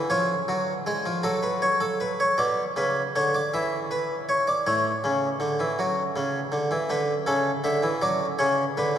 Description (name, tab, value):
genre	classical, baroque-style two-part invention for harpsichord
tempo	53 BPM (dotted quarters)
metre	6/8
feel	straight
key	unclear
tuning	A4 = 440 Hz
part	harpsichord	solo	0.0-9.0 s	A2 to E5	-22 LUFS	equal	none
room	wet cathedral reverb, RT60 6.1 s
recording	recorded in a church or concert hall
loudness	-22 LUFS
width	side -10 dB against mid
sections	0.0-2.4 A section; 2.4-9.0 B section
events	none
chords	0.1 C#/E#; 1.2 F#m; 2.4 Bm; 3.5 E5; 4.7 A; 5.8 Dmaj7; 6.9 Bm7